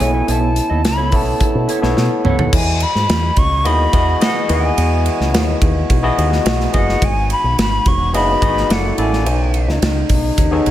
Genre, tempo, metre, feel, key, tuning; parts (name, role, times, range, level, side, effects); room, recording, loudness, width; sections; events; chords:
polished 1980s jazz-funk pop; 107 BPM; 4/4; straight; A4 = 436 Hz
breathy jazz flute; melody; 0.0-9.8 s; F#5 to C#6; -21 LUFS; left 1 dB; slapback echo
overdriven tine electric piano; accompaniment; 0.0-10.7 s; A#3 to D#5; -20 LUFS; left 2 dB; wide subtle chorus, slapback echo
warm brass ensemble; sustained chords; 0.0-10.7 s; C#3 to D#5; -25 LUFS; right 1 dB
mellow electric guitar; riff; 0.0-2.5 s; B3 to D#5; -24 LUFS; right 7 dB; wide subtle chorus, slapback echo
fingered electric bass with an envelope filter; bass; 0.0-10.7 s; E1 to B2; -18 LUFS; equal
modern studio drum kit; drums; 0.0-10.7 s; crash cymbal, hi-hat, kick drum, ride cymbal, snare drum, toms; -18 LUFS; equal
moderate lush hall reverb, RT60 1.9 s, small room ambience; big arena sound; -13 LUFS; side -12 dB against mid
0.0-2.5 A section; 2.5-10.7 B section
drum fill 2.0-2.5
0.0 B9sus4; 2.5 Emaj9; 7.0 G#m7; 8.7 F#7alt; 9.3 B13